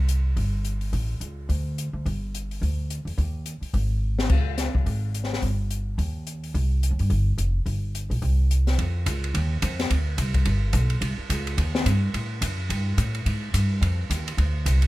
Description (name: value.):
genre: jazz piano trio.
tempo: 214 BPM.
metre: 4/4.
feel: swing 59% on 8ths.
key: C minor.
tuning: A4 = 442 Hz.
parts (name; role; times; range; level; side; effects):
upright bass; bass; 0.0-14.9 s; F1 to A2; -23 LUFS; equal; none.
open jazz drum kit; drums; 0.1-14.9 s; crash cymbal, hi-hat, kick drum, ride cymbal, snare drum; -29 LUFS; left 1 dB; none.
room: little or no reverb.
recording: close, detailed microphones.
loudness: -23 LUFS.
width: side -18 dB against mid.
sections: 0.0-8.8 A section; 8.8-14.9 B section.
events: drum fill 4.0.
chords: none.